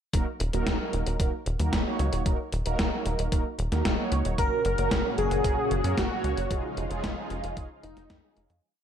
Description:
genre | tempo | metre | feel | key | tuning
synthwave | 113 BPM | 4/4 | straight | Eb minor | A4 = 441 Hz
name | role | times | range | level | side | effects
mellow synth brass | stabs | 0.1-8.6 s | Gb3 to Db5 | -33 LUFS | right 3 dB | chorus, phaser, tape echo
tight sequencer bass | bass | 0.1-8.6 s | Eb1 to Gb2 | -29 LUFS | equal | tube saturation, sidechain pumping
electronic kick drum | drums | 0.1-8.2 s | none | -29 LUFS | equal | none
gated 80s digital drum machine | drums | 0.1-8.6 s | hi-hat, snare drum | -32 LUFS | left 1 dB | gated reverb, gated reverb snare
wide unison lead | melody | 4.4-8.5 s | Eb4 to Bb4 | -30 LUFS | equal | lush chorus, cassette tape, ping-pong delay
FM electric piano with soft pad layer | second line | 4.4-8.5 s | Eb4 to Bb4 | -35 LUFS | left 3 dB | none
analog string pad | sustained chords | 4.4-8.6 s | Bb2 to Gb4 | -33 LUFS | equal | ensemble chorus, sidechain pumping
room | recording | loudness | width
light reverb | none | -25 LUFS | side -9 dB against mid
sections
0.1-8.6 verse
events
fade-out 5.8-8.6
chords
0.1 Ebm; 4.4 Gb; 6.5 Dbadd9/F

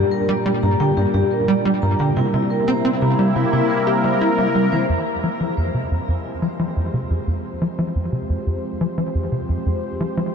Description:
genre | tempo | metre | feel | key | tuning
ambient, sequencer-driven space music | 88 BPM | 4/4 | straight | F minor from 4.9 s | A4 = 441 Hz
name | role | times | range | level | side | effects
sweeping resonant pad | sustained chords | 0.0-10.3 s | Bb2 to C5 | -22 LUFS | equal | chorus, shimmer reverb
vibraphone with medium hard mallets | arpeggios | 0.0-4.8 s | E4 to Bb5 | -24 LUFS | left 3 dB | auto-pan, tape echo, shimmer reverb
tight sequencer bass | riff | 0.0-10.2 s | F2 to G4 | -20 LUFS | right 1 dB | lush chorus, vintage 12-bit sampler grit, tape echo
room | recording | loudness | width
moderate huge ambient reverb, RT60 8.6 s | dark, warm production | -18 LUFS | side -6 dB against mid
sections
0.0-4.9 A section; 4.9-10.3 B section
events
filter sweep on analog synth bass 4.9-10.3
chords
0.0 Gm; 2.2 C7; 4.9 Fmadd9

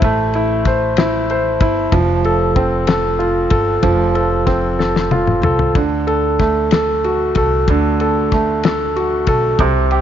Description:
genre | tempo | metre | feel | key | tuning
six-eight pop ballad | 63 BPM (dotted quarters) | 6/8 | straight | unclear | A4 = 439 Hz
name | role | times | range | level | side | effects
clear upright piano | accompaniment | 0.0-10.0 s | C3 to C5 | -15 LUFS | right 1 dB | none
upright bass | bass | 0.0-10.0 s | F1 to D2 | -20 LUFS | equal | none
damped 70s drum kit | drums | 0.0-10.0 s | kick drum, ride cymbal, snare drum, toms | -19 LUFS | left 2 dB | none
room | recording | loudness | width
light reverb, small room ambience | 1960s-style stereo, nothing above 7.5 kHz | -13 LUFS | side -10 dB against mid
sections
0.0-10.0 A section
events
drum fill 4.8-5.8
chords
0.0 Am7; 1.9 F; 5.8 D

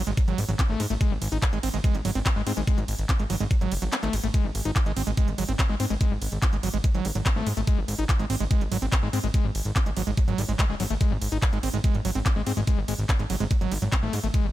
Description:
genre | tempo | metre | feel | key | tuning
psychedelic trance | 144 BPM | 4/4 | straight | unclear | A4 = 440 Hz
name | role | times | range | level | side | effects
overdriven acid bass | riff | 0.0-14.5 s | F#3 to D#4 | -30 LUFS | moving between left 8 dB and right 9 dB | distortion, auto-pan, sidechain pumping, digital delay
fat analog bass | bass | 0.0-14.5 s | F#1 to G#2 | -28 LUFS | equal | tube saturation
drum and bass drum kit | drums | 0.1-14.4 s | handclaps, hi-hat, ride cymbal | -33 LUFS | equal | none
electronic kick drum | drums | 0.2-14.4 s | none | -23 LUFS | equal | none
room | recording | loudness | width
little or no reverb | none | -23 LUFS | side -14 dB against mid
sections
0.0-14.5 A section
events
kick drops out 3.9-4.3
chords
0.0 G#5

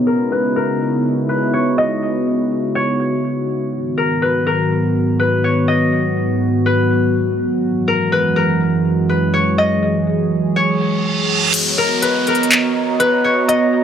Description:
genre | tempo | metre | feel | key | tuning
hip hop, atmospheric cloud-rap | 123 BPM | 4/4 | half-time | B major | A4 = 440 Hz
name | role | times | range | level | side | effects
concert harp | melody | 0.0-13.8 s | A#4 to D#5 | -19 LUFS | left 2 dB | low-pass filter, tape echo
warbly tape-like pad | sustained chords | 0.0-13.8 s | F#2 to A#5 | -16 LUFS | right 1 dB | chorus, built-in reverb, low-pass filter
reverse cymbal and downlifter | sound effects | 10.8-13.8 s | none | -21 LUFS | right 3 dB | none
smooth R&B drum kit | drums | 11.5-13.6 s | crash cymbal, handclaps, hi-hat | -18 LUFS | left 1 dB | overdrive
room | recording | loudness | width
wet studio reverb, RT60 0.6 s | none | -14 LUFS | side -8 dB against mid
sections
0.0-11.5 A section; 11.5-13.8 B section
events
filter sweep 0.0-11.5; reverse cymbal 10.8-11.5; kick muted 11.5-13.8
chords
0.0 C#m11; 3.7 G#m7; 7.6 F#5; 11.5 Bmaj9

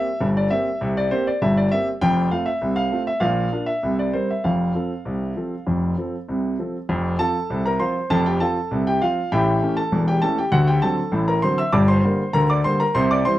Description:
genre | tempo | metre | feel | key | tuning
ragtime piano | 99 BPM | 2/4 | straight | F major | A4 = 441 Hz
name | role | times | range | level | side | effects
warm grand piano | solo | 0.0-13.4 s | E1 to E6 | -18 LUFS | equal | none
room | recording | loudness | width
moderate studio reverb, RT60 0.8 s | nothing above 11.0 kHz | -18 LUFS | side -14 dB against mid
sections
0.0-6.9 A section; 6.9-13.4 B section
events
none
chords
0.0 C5; 2.0 F; 3.2 Bb; 3.8 C5; 4.4 F; 9.3 A7; 10.5 D7; 11.7 Gm

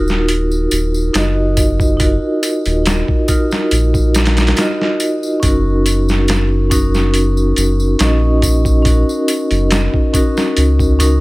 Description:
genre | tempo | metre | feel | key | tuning
trip hop | 70 BPM | 4/4 | straight | Eb minor | A4 = 439 Hz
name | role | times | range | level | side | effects
vibraphone with soft mallets | accompaniment | 0.0-11.2 s | Db4 to Eb5 | -16 LUFS | equal | tremolo, tape echo
round analog bass | bass | 0.0-11.2 s | Eb1 to Db2 | -15 LUFS | equal | tube saturation
boom bap sampler-style drum kit | drums | 0.1-11.2 s | hi-hat, kick drum, snare drum | -17 LUFS | equal | none
tambourine | percussion | 0.1-11.2 s | none | -27 LUFS | left 1 dB | none
room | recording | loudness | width
light reverb, digital ambience | none | -12 LUFS | side -21 dB against mid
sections
0.0-11.2 A section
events
none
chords
0.0 Ebmadd9; 5.4 Gb6

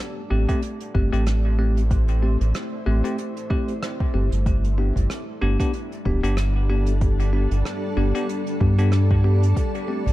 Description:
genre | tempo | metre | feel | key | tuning
ambient dub | 94 BPM | 4/4 | swing 56% on 16ths | A minor | A4 = 437 Hz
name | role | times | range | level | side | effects
granular cloud pad | sustained chords | 0.0-10.1 s | G3 to D5 | -31 LUFS | left 1 dB | built-in reverb
bell-like tine electric piano | stabs | 0.3-10.0 s | A3 to G4 | -28 LUFS | left 1 dB | fast stereo tremolo, low-pass filter, dub echo
round analog bass | bass | 0.3-10.1 s | D1 to G2 | -19 LUFS | equal | none
electronic kick drum | drums | 0.5-10.1 s | none | -24 LUFS | equal | none
soft brush drum kit | drums | 0.5-10.1 s | hi-hat, rim click | -36 LUFS | right 2 dB | dub echo
room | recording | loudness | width
small room ambience | dark, warm production | -19 LUFS | side -16 dB against mid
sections
0.0-10.1 A section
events
fade-in on ambient pad 0.0-10.1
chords
0.0 Am7; 4.5 G; 9.6 Am7

